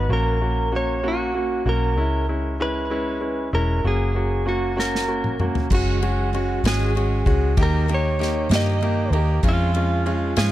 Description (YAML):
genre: six-eight pop ballad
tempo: 64 BPM (dotted quarters)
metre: 6/8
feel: straight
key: unclear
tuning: A4 = 435 Hz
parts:
  - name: direct-recorded clean electric guitar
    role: melody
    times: 0.0-10.5 s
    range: E#4 to D#5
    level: -26 LUFS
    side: equal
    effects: tape echo
  - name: bright grand piano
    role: accompaniment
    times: 0.0-10.5 s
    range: G#3 to G4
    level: -25 LUFS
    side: right 1 dB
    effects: none
  - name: vintage muted fingered electric bass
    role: bass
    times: 0.0-10.5 s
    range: E1 to G#2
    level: -23 LUFS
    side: equal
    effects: none
  - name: unplugged drum kit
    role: drums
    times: 4.8-10.5 s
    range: crash cymbal, kick drum, ride cymbal, snare drum, toms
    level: -24 LUFS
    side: equal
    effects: none
  - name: picked steel-string acoustic guitar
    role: arpeggios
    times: 5.7-10.5 s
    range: D#3 to G#4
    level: -31 LUFS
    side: right 6 dB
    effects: tape echo
room: light reverb, studio ambience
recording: dark, warm production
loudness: -19 LUFS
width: side -14 dB against mid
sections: 0.0-5.7 A section; 5.7-10.5 B section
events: drum fill 4.8-5.7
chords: 0.1 F#/A#; 2.0 C#m; 3.8 F#; 5.7 F#sus2; 7.6 D#; 9.4 C#/E#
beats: | 0.10 1.04 | 1.97 2.90 | 3.84 4.77 | 5.70 6.63 | 7.57 8.50 | 9.43 10.36